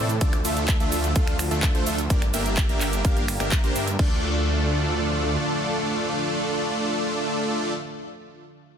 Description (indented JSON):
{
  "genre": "EDM, festival progressive house",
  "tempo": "127 BPM",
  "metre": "4/4",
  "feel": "straight",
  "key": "D minor",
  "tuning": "A4 = 440 Hz",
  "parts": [
    { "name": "lush unison pad", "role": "sustained chords", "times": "0.0-7.7 s", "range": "C3 to Bb4", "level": "-32 LUFS", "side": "right 1 dB", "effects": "chorus, phaser, sidechain pumping" },
    { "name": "supersaw chords", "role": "riff", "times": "0.0-7.7 s", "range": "A3 to F5", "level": "-25 LUFS", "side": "equal", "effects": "vintage 12-bit sampler grit, sidechain pumping, ping-pong delay" },
    { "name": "detuned saw bass", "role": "bass", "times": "0.0-5.4 s", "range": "G1 to A2", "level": "-27 LUFS", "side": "equal", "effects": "sidechain pumping" },
    { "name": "house drum kit", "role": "drums", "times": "0.1-4.1 s", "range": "cabasa, crash cymbal, finger snaps, handclaps, hi-hat", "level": "-30 LUFS", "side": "right 2 dB", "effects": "small room ambience" },
    { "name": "electronic kick drum", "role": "drums", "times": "0.2-4.1 s", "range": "none", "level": "-22 LUFS", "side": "equal", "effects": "small room ambience" }
  ],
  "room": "light reverb",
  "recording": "dense, heavily limited modern master",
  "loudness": "-21 LUFS",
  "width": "side -8 dB against mid",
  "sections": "0.0-4.0 A section; 4.0-7.8 B section",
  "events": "drop 0.0-4.0",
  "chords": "0.2 Dm; 2.1 Gm; 4.0 Dm"
}